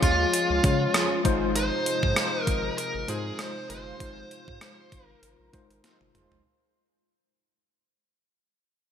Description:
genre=1980s-style pop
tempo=98 BPM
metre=4/4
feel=swing 55% on 16ths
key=Ab major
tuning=A4 = 443 Hz
part: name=dark smooth lead guitar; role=melody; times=0.0-5.8 s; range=F4 to C5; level=-28 LUFS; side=equal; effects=overdrive, ping-pong delay
part: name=mellow tine electric piano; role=accompaniment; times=0.0-6.5 s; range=Ab3 to Db5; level=-31 LUFS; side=left 5 dB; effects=medium stereo tremolo
part: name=brassy analog pad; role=sustained chords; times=0.0-6.4 s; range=C3 to F4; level=-35 LUFS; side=right 1 dB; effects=chorus
part: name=round analog bass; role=bass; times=0.0-6.4 s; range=Gb1 to Db3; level=-31 LUFS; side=equal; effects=none
part: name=clean 12-bit digital drum machine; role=drums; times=0.0-6.4 s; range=hi-hat, kick drum, rim click, snare drum, toms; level=-28 LUFS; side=right 1 dB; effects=overdrive
part: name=mellow synth brass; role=stabs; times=0.9-6.4 s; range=F3 to C5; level=-38 LUFS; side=right 1 dB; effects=none
room=moderate plate reverb, RT60 3.2 s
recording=bright 1980s-style digital production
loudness=-23 LUFS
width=side -8 dB against mid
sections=0.0-6.5 A section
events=fade-out 0.0-6.5; drum fill 5.8-6.5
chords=0.0 Db; 1.2 Ab6

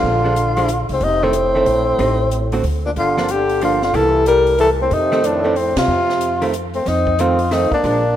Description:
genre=jazz, small-group swing and bop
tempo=185 BPM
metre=3/4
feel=swing 63% on 8ths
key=F mixolydian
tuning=A4 = 440 Hz
part: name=mellow tenor saxophone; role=melody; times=0.0-8.2 s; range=C4 to Bb4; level=-17 LUFS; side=left 2 dB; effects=none
part: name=bright trombone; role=second line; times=0.0-8.2 s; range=Ab2 to C4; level=-23 LUFS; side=right 3 dB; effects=none
part: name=hollow-body jazz guitar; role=accompaniment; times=0.0-8.0 s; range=D3 to Gb4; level=-23 LUFS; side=right 4 dB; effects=none
part: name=upright bass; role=bass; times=0.0-8.2 s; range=F1 to C3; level=-22 LUFS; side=equal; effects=none
part: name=open jazz drum kit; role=drums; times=0.4-7.9 s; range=hi-hat, kick drum, ride cymbal, snare drum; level=-28 LUFS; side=equal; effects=none
room=moderate lush hall reverb, RT60 1.7 s, small room ambience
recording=rough home demo mix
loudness=-14 LUFS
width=side -11 dB against mid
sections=0.0-6.9 A section; 6.9-8.2 A section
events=band accent 5.7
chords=0.0 Bb7; 1.0 F7; 2.0 Am7b5; 2.6 N.C.; 3.0 Gm7; 3.9 C7; 4.9 F7

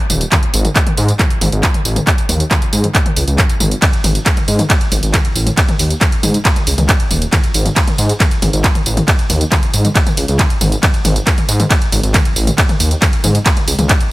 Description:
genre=driving peak-time techno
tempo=137 BPM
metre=4/4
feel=straight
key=unclear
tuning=A4 = 439 Hz
part: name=detuned saw bass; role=bass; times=0.1-13.9 s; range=D#1 to G#2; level=-15 LUFS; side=equal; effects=sidechain pumping
part: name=techno drum kit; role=drums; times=0.1-14.1 s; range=handclaps, hi-hat, ride cymbal, tambourine, toms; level=-15 LUFS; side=equal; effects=sidechain pumping on hats, sidechain pumping on toms, sidechain pumping on perc, sidechain pumping on cymbals
part: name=electronic kick drum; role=drums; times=0.3-14.0 s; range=none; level=-15 LUFS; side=equal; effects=none
room=little or no reverb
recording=none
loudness=-11 LUFS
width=side -18 dB against mid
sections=0.0-14.1 A section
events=none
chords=none

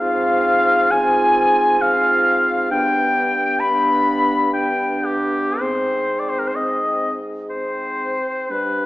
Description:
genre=classical, slow romantic movement for wind quintet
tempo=54-68 BPM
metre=3/4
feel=rubato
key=unclear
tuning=A4 = 440 Hz
part: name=silver concert flute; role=melody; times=0.0-8.9 s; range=G4 to B5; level=-26 LUFS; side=left 2 dB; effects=none
part: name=warm oboe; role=second line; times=0.0-8.9 s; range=G4 to B5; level=-18 LUFS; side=left 1 dB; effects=none
part: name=warm French horn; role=accompaniment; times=0.0-8.9 s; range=G3 to C4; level=-29 LUFS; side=equal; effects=none
part: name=warm clarinet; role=accompaniment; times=0.0-8.9 s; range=C4 to F4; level=-28 LUFS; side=right 4 dB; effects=none
part: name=dark bassoon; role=bass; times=0.0-8.9 s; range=G2 to Ab2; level=-25 LUFS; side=equal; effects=none
room=wet recital hall reverb, RT60 1.7 s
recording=small speaker sound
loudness=-16 LUFS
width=side -17 dB against mid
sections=0.0-8.9 A section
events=none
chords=0.0 Fm/Ab; 2.7 G; 5.6 Ab

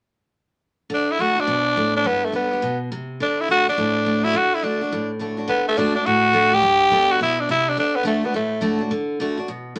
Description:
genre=rock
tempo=210 BPM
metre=4/4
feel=swing 62% on 8ths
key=D mixolydian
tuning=A4 = 439 Hz
part: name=growling tenor saxophone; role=melody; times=0.9-8.6 s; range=A3 to G4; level=-21 LUFS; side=equal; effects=none
part: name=picked steel-string acoustic guitar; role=accompaniment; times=0.9-9.8 s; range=G2 to G4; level=-26 LUFS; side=equal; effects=none
room=moderate studio reverb, RT60 0.5 s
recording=none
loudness=-20 LUFS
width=mono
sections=0.9-5.5 A section; 5.5-9.8 B section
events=none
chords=0.9 D; 2.1 G; 3.2 D; 6.6 G; 7.8 D

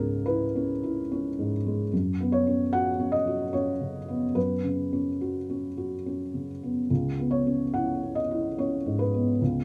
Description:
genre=neoclassical minimalist piano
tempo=72 BPM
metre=3/4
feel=rubato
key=C# minor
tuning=A4 = 441 Hz
part: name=felt-muted upright piano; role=solo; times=0.0-9.6 s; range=C#2 to F#5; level=-28 LUFS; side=equal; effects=none
room=light reverb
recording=none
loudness=-28 LUFS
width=mono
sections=0.0-9.6 A section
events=none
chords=0.0 C#m7; 1.9 F#sus4; 6.9 C#m7

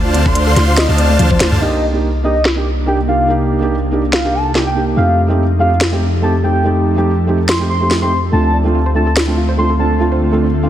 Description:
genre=future bass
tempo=143 BPM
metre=4/4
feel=swing 54% on 16ths, half-time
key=C dorian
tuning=A4 = 440 Hz
part: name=airy dreamy lead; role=arpeggios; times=0.0-1.6 s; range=A5 to C6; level=-24 LUFS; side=left 1 dB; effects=chorus, sidechain pumping
part: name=soft round pluck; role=arpeggios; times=0.0-1.6, 8.3-10.7 s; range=A3 to C5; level=-22 LUFS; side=right 1 dB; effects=chorus, cassette tape, sidechain pumping, digital delay
part: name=supersaw chords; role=riff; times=0.0-1.6 s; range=D3 to C6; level=-18 LUFS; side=equal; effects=sidechain pumping, low-pass filter, digital delay
part: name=long sustained 808-style bass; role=bass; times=0.0-10.7 s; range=C2 to F2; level=-16 LUFS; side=equal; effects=sidechain pumping
part: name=trap drum kit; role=drums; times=0.1-9.3 s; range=crash cymbal, hi-hat, snare drum, toms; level=-18 LUFS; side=left 1 dB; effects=low-pass filter on hats, small room ambience, low-pass filter on snare, low-pass filter on toms, low-pass filter on cymbals
part: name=electronic kick drum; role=drums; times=0.3-1.4 s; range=none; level=-17 LUFS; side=equal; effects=small room ambience
part: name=soft octave-layered synth lead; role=melody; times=0.8-10.0 s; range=C5 to C6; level=-20 LUFS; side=equal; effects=chorus, sidechain pumping, digital delay
part: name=felt-muted upright piano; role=accompaniment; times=1.6-10.7 s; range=A3 to G4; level=-18 LUFS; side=right 2 dB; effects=sidechain pumping, digital delay
part: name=ethereal airy pad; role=sustained chords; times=2.4-10.7 s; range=C3 to A4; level=-22 LUFS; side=equal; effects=ensemble chorus, built-in reverb, sidechain pumping
room=moderate lush hall reverb, RT60 1.9 s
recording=heavily compressed radio sound, multiband compression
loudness=-12 LUFS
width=side -11 dB against mid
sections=0.0-1.6 A section; 1.6-10.7 B section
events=drop 0.0-1.6; drum fill 1.2-1.6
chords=0.0 Dm7; 1.6 Cm9; 5.0 F9; 8.3 Dm7

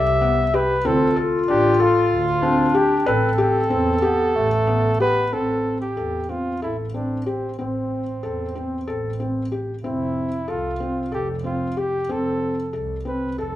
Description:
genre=contemporary instrumental, chamber music in an uneven meter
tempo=186 BPM (eighths)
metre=7/8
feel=straight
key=A minor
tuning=A4 = 440 Hz
part: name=warm flugelhorn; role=melody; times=0.0-13.6 s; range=C4 to E5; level=-24 LUFS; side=equal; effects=none
part: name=dark clarinet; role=second line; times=0.0-5.3 s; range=A3 to G4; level=-22 LUFS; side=left 3 dB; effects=none
part: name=felt-muted upright piano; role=arpeggios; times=0.0-13.6 s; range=B3 to B4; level=-24 LUFS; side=left 2 dB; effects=none
part: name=dark double bass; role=bass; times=0.0-13.6 s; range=F1 to E2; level=-27 LUFS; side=right 2 dB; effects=none
room=moderate recital hall reverb, RT60 1.5 s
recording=minimal, uncompressed stereo recording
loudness=-19 LUFS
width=side -13 dB against mid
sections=0.0-5.3 A section; 5.3-13.6 B section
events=none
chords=0.0 Am9/C (rootless); 0.9 Dm7; 3.1 Am9; 5.3 Am; 9.8 F

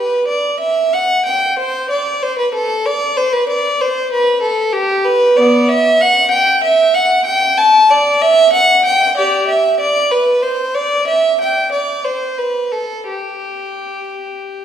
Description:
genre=classical, baroque-style suite movement for unaccompanied violin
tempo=94 BPM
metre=4/4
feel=rubato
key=G major from 5.4 s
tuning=A4 = 437 Hz
part: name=warm violin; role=solo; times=0.0-14.6 s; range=B3 to A5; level=-12 LUFS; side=equal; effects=none
room=wet recital hall reverb, RT60 1.7 s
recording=heard from further back in the room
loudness=-11 LUFS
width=side -9 dB against mid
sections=0.0-14.6 A section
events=none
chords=none

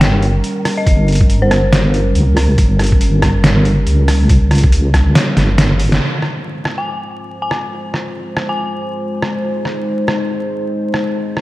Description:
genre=deep dubstep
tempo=140 BPM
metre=4/4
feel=swing 59% on 16ths, half-time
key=F minor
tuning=A4 = 441 Hz
part: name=dark detuned synth bell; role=melody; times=0.0-2.0, 6.8-8.8 s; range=C5 to Ab5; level=-23 LUFS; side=left 2 dB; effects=chorus, dub echo
part: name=dark analog pad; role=sustained chords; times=0.0-11.4 s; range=G3 to C5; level=-21 LUFS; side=equal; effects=chorus
part: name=deep soft wobble bass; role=bass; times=0.0-6.0 s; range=G1 to Db2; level=-13 LUFS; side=equal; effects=chorus
part: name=trip hop sampler-style drum kit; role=drums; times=0.0-11.4 s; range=hi-hat, rim click, snare drum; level=-17 LUFS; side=equal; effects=studio reverb
part: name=electronic kick drum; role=drums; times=0.9-5.0 s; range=none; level=-12 LUFS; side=equal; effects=studio reverb
room=moderate echo chamber reverb, RT60 2.1 s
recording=dark, warm production, vinyl crackle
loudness=-12 LUFS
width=side -17 dB against mid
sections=0.0-6.0 A section; 6.0-11.4 B section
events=drum fill 5.6-6.0; band accent 5.9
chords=0.0 Gdim; 6.0 Fm

